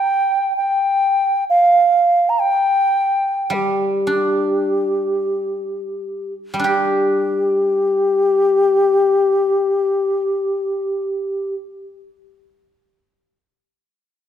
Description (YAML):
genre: chinese traditional, Chinese chamber ensemble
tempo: free time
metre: none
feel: none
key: unclear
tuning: A4 = 440 Hz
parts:
  - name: bright reedy low xiao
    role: melody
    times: 0.0-11.5 s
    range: G4 to Bb5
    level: -16 LUFS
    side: equal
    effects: none
  - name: guzheng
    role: accompaniment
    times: 3.5-12.6 s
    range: G3 to G4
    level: -22 LUFS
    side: right 2 dB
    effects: none
room: moderate concert hall reverb, RT60 1.8 s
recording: none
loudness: -15 LUFS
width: side -9 dB against mid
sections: 0.0-6.7 A section; 6.7-10.8 B section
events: slowing down 0.0-6.7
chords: none